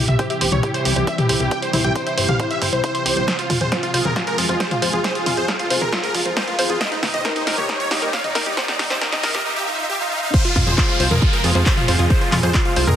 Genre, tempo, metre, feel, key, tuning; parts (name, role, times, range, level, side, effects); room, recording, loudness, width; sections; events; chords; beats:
uplifting trance; 136 BPM; 4/4; straight; F minor; A4 = 441 Hz
supersaw chords; melody; 0.0-12.9 s; Eb4 to G5; -24 LUFS; right 1 dB; sidechain pumping, low-pass filter, dub echo
plucky unison lead; second line; 0.0-12.9 s; Eb4 to G5; -29 LUFS; right 1 dB; sidechain pumping, tape echo
lush unison pad; sustained chords; 0.1-13.0 s; Bb2 to Ab4; -27 LUFS; equal; chorus, phaser, sidechain pumping
analog pluck; arpeggios; 0.0-12.9 s; Eb4 to C6; -26 LUFS; left 3 dB; chorus, sidechain pumping, tape echo
plucky analog bass; bass; 0.0-12.9 s; G1 to F2; -23 LUFS; equal; sidechain pumping
riser, swell and downlifter; sound effects; 1.2-13.0 s; -28 LUFS; right 1 dB
punchy analog drum machine; drums; 0.1-13.0 s; crash cymbal, handclaps, hi-hat, snare drum, toms; -22 LUFS; equal; sidechain pumping on hats, sidechain pumping on toms, sidechain pumping on cymbals
electronic kick drum; drums; 0.2-12.6 s; -20 LUFS; equal; high-pass filter on kick
moderate lush hall reverb, RT60 2.0 s; dense, heavily limited modern master, high-pass filter; -17 LUFS; side -10 dB against mid
0.0-10.3 A section; 10.3-13.0 B section
build-up 0.0-10.3; filter sweep on synth pluck 0.0-10.3; filter sweep 0.0-10.3; drum fill 3.3-9.5; swell 9.5-10.3; drop 10.3-13.0
0.0 C; 3.3 Fm; 6.8 Eb; 10.3 Fm
0.19 0.63 1.07 | 1.51 1.96 2.40 2.84 | 3.28 3.72 4.16 4.60 | 5.04 5.49 5.93 6.37 | 6.81 7.25 7.69 8.13 | 8.57 9.01 9.46 9.90 | 10.34 10.78 11.22 11.66 | 12.10 12.54